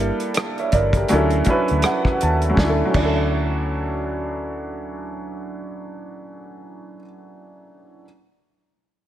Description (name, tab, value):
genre	R&B, neo-soul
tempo	81 BPM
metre	4/4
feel	swing 59% on 16ths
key	D major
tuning	A4 = 445 Hz
part	warm upright piano	accompaniment	0.0-8.1 s	F#3 to A5	-22 LUFS	right 1 dB	none
part	vintage muted fingered electric bass	bass	0.0-7.0 s	G1 to Eb2	-23 LUFS	equal	none
part	warm soul drum kit	drums	0.2-3.2 s	crash cymbal, hi-hat, kick drum, rim click, snare drum	-23 LUFS	equal	none
room	light reverb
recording	none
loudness	-18 LUFS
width	side -12 dB against mid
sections	0.0-2.6 A section; 2.6-5.5 B section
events	upright piano fill 1.1-2.6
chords	0.0 Gm6; 1.1 Dmaj9